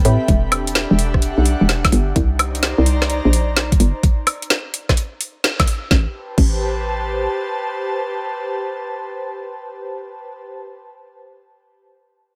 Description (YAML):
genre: UK garage, two-step garage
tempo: 128 BPM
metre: 4/4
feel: swing 66% on 16ths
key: A minor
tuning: A4 = 438 Hz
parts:
  - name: hollow knocking FM bass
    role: bass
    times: 0.0-7.3 s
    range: E1 to A2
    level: -20 LUFS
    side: equal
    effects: none
  - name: garage drum kit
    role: drums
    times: 0.0-6.5 s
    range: crash cymbal, hi-hat, rim click, snare drum, woodblock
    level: -22 LUFS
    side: equal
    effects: overdrive
  - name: airy breathy pad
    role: texture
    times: 0.0-10.4 s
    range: C4 to B5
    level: -27 LUFS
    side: equal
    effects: chorus, sidechain pumping
  - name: electronic kick drum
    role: drums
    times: 0.3-6.5 s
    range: none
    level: -19 LUFS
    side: equal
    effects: overdrive
room: digital ambience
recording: none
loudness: -19 LUFS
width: mono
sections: 0.0-5.9 A section; 5.9-9.7 B section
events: drop 0.0-5.9; band accent 5.4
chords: 0.3 Em9; 2.2 Cm9; 4.0 N.C.; 5.9 Am9